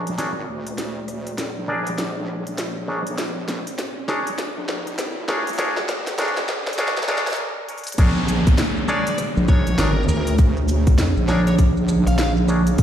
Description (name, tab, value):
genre	glitch hop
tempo	100 BPM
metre	4/4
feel	swing 62% on 16ths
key	unclear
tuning	A4 = 440 Hz
part	dark analog pad	sustained chords	0.0-12.8 s	Bb3 to D5	-30 LUFS	right 3 dB	chorus, sidechain pumping
part	clav	stabs	0.0-12.6 s	D4 to D5	-26 LUFS	equal	auto-wah, sidechain pumping, tape echo
part	wobble bass	bass	0.0-12.8 s	Ab1 to F2	-22 LUFS	equal	chorus, tube saturation, high-pass filter
part	riser and downlifter	sound effects	1.2-12.8 s	none	-30 LUFS	equal	none
part	drum and bass drum kit	drums	0.1-12.8 s	crash cymbal, hi-hat, rim click, shaker, snare drum	-28 LUFS	equal	none
part	electronic kick drum	drums	8.0-12.8 s	none	-15 LUFS	equal	none
part	biting lead guitar	melody	8.9-12.3 s	Bb4 to F5	-29 LUFS	left 1 dB	overdrive, vintage 12-bit sampler grit, tape echo
room	moderate plate reverb, RT60 1.9 s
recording	played on a big sound system in a bare room, stone room reverb, high-pass filter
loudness	-19 LUFS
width	side -10 dB against mid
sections	0.0-8.0 A section; 8.0-12.8 B section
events	build-up 0.0-8.0; drum fill 0.0-7.4, 7.7-8.0; filter sweep 0.0-8.0; riser 1.2-7.4; stop 7.4-8.0; drop 8.0-12.8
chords	0.0 Bb7#9